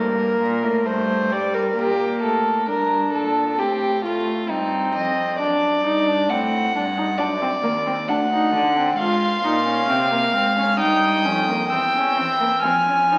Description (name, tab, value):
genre	classical, baroque-style fugue for string quartet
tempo	66 BPM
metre	4/4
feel	straight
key	F minor from 9.0 s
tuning	A4 = 440 Hz
part	rich violin	melody	0.0-1.8, 9.0-13.2 s	Bb4 to F6	-26 LUFS	equal	none
part	warm viola	accompaniment	0.0-13.2 s	G3 to F4	-26 LUFS	equal	none
part	rich cello	bass	0.0-13.2 s	D2 to F3	-30 LUFS	equal	none
part	rich violin	second line	1.8-13.2 s	Eb4 to Ab5	-23 LUFS	equal	none
room	wet recital hall reverb, RT60 1.5 s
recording	very old 78 rpm record, vinyl crackle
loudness	-20 LUFS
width	mono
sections	0.0-1.8 A section; 1.8-13.2 B section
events	none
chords	0.0 Gm; 3.6 Am7b5; 5.4 D/F#; 7.2 D7; 9.0 Fm/Ab; 10.8 Gdim; 11.7 C/E; 12.6 Fm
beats	0.86 | 1.77 2.68 3.59 4.49 | 5.39 6.29 7.18 8.08 | 8.97 9.88 10.78 11.70 | 12.63